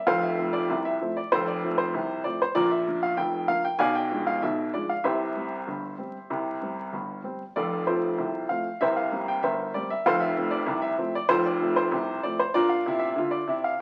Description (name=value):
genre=ragtime piano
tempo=96 BPM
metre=2/4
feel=straight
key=F major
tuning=A4 = 440 Hz
part: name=warm upright piano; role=solo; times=0.0-13.8 s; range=F1 to G#5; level=-27 LUFS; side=equal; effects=none
room=moderate large studio reverb, RT60 1.2 s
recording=very old 78 rpm record, vinyl crackle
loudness=-27 LUFS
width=mono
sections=0.0-13.8 A section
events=none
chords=0.1 F; 2.6 Bb; 3.8 Bdim7; 5.1 C; 7.6 F; 8.8 C5; 10.1 F; 12.5 Bb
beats=| 0.07 0.69 | 1.31 1.93 | 2.55 3.18 | 3.80 4.42 | 5.05 5.68 | 6.31 6.93 | 7.56 8.19 | 8.81 9.44 | 10.06 10.68 | 11.30 11.93 | 12.55 13.17 | 13.79